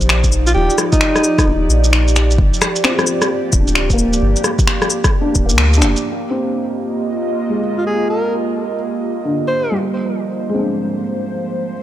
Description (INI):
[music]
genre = future garage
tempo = 131 BPM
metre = 4/4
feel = swing 64% on 16ths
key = F dorian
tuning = A4 = 439 Hz
[part]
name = felt-muted upright piano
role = accompaniment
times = 0.0-11.8 s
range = D3 to C5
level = -22 LUFS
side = left 1 dB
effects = sidechain pumping, tape echo
[part]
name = airy breathy pad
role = sustained chords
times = 0.0-11.8 s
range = F3 to Eb5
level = -21 LUFS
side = right 2 dB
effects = chorus, sidechain pumping
[part]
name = soft dub sub bass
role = bass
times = 0.0-6.0 s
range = D1 to D2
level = -15 LUFS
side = equal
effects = sidechain pumping
[part]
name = electronic shaker, finger snaps, cabasa and rim click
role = drums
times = 0.0-6.0 s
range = none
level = -17 LUFS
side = equal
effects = none
[part]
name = electronic kick drum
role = drums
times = 0.2-5.5 s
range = none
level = -16 LUFS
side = equal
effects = overdrive
[part]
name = breathy alto saxophone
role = melody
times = 0.5-1.6, 7.8-9.8 s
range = Eb4 to C5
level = -20 LUFS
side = equal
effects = analog delay
[sound]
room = light reverb, digital ambience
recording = dry, gritty hardware recording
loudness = -14 LUFS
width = side -12 dB against mid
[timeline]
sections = 0.0-6.0 A section; 6.0-11.8 B section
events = band accent 5.6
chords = 0.0 Ebmaj9; 2.4 Gm7; 6.0 Fm11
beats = 0.10 | 0.55 1.01 1.47 1.93 | 2.38 2.84 3.30 3.76 | 4.22 4.67 5.13 5.59 | 6.05 6.51 6.96 7.42 | 7.88 8.34 8.80 9.26 | 9.71 10.17 10.63 11.09 | 11.54